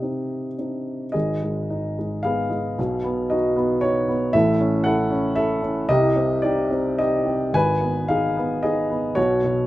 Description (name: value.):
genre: classical, lyrical solo piano.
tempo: 106-118 BPM.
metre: 3/4.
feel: rubato.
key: unclear.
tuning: A4 = 440 Hz.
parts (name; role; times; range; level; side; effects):
dark baby grand piano; solo; 0.0-9.7 s; G#1 to G#5; -20 LUFS; equal; none.
room: light reverb.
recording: none.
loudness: -20 LUFS.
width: side -16 dB against mid.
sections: 0.0-1.1 A section; 1.1-9.7 A section.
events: none.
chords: 0.0 Cmadd9; 1.1 G#m; 2.8 Badd9; 4.3 A; 5.9 Cmadd9; 7.5 G#m.